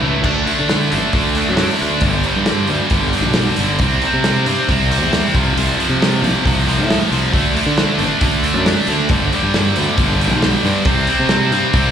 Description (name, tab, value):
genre	quiet-loud alternative rock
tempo	136 BPM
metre	4/4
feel	straight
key	unclear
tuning	A4 = 440 Hz
part	high-gain distorted guitar	riff	0.0-11.9 s	F2 to D4	-16 LUFS	equal	distortion
part	fuzz fingered electric bass	bass	0.0-11.9 s	G1 to D3	-19 LUFS	equal	overdrive
part	loose indie drum kit	drums	0.2-11.8 s	crash cymbal, hi-hat, kick drum, snare drum	-20 LUFS	equal	none
room	light reverb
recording	live gig heard through the venue's PA, club reverb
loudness	-13 LUFS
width	side -8 dB against mid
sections	0.2-11.9 A section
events	none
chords	0.2 D5; 2.0 G5; 3.8 C; 5.3 F5/C; 7.3 D5; 9.1 G5; 10.9 C5